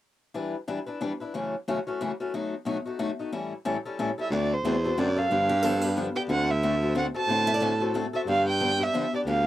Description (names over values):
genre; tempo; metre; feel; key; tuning
acoustic string swing (jazz manouche); 182 BPM; 3/4; swing 59% on 8ths; D mixolydian; A4 = 439 Hz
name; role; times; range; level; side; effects
picked swing-style acoustic guitar; accompaniment; 0.3-9.5 s; F#2 to B4; -29 LUFS; left 3 dB; none
warm violin; melody; 4.2-9.5 s; C5 to A5; -26 LUFS; right 2 dB; none
bright baritone saxophone; bass; 4.3-9.5 s; D2 to A2; -27 LUFS; right 1 dB; none
picked steel-string acoustic guitar; second line; 5.5-8.0 s; G4 to E5; -34 LUFS; right 4 dB; none
room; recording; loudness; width
light reverb; dry, close 1970s-style studio recording; -25 LUFS; side -14 dB against mid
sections
0.3-4.3 A section; 4.3-9.5 B section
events
none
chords
0.3 Em7; 1.3 F#m7; 2.3 B7; 3.3 A7; 4.3 D7; 5.3 G7; 6.3 D7; 8.3 G7